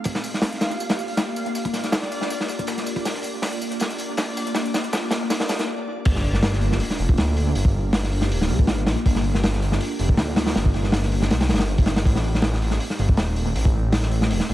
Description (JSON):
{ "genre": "drum and bass, jungle", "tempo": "160 BPM", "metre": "4/4", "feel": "straight", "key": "G minor", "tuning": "A4 = 437 Hz", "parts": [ { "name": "ethereal airy pad", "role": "sustained chords", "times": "0.0-14.5 s", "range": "A3 to Bb4", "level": "-29 LUFS", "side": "left 1 dB", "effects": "ensemble chorus, built-in reverb, phaser, vintage 12-bit sampler grit" }, { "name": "crunchy breakbeat drum kit", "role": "drums", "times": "0.0-14.5 s", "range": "crash cymbal, hi-hat, kick drum, snare drum", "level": "-22 LUFS", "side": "equal", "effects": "high-pass filter on kick, high-pass filter on hats, high-pass filter on cymbals, high-pass filter on snare, high-pass filter on room, analog delay" }, { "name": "backwards swelling texture", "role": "texture", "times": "0.0-5.7 s", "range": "D5", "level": "-34 LUFS", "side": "equal", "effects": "built-in reverb" }, { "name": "breakbeat sampler-style drum kit", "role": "drums", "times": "0.1-5.7 s", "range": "hi-hat, snare drum, tambourine", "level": "-34 LUFS", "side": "equal", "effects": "high-pass filter on perc, high-pass filter on snare, high-pass filter on hats, analog delay" }, { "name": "detuned saw bass", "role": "bass", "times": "6.1-14.5 s", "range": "D1 to D2", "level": "-22 LUFS", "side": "equal", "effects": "none" }, { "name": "sub drop", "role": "sound effects", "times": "6.2-7.6 s", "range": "none", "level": "-30 LUFS", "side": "equal", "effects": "none" } ], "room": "light reverb, small room ambience", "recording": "echo-heavy mix, vinyl crackle", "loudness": "-20 LUFS", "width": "side -14 dB against mid", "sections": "0.1-6.1 A section; 6.1-14.5 B section", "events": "build-up 0.1-6.1; drum fill 3.1-5.7; stop 5.7-6.1; drop 6.1-14.5; impact 6.1-7.6", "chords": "0.1 Gm7; 12.1 Am7b5" }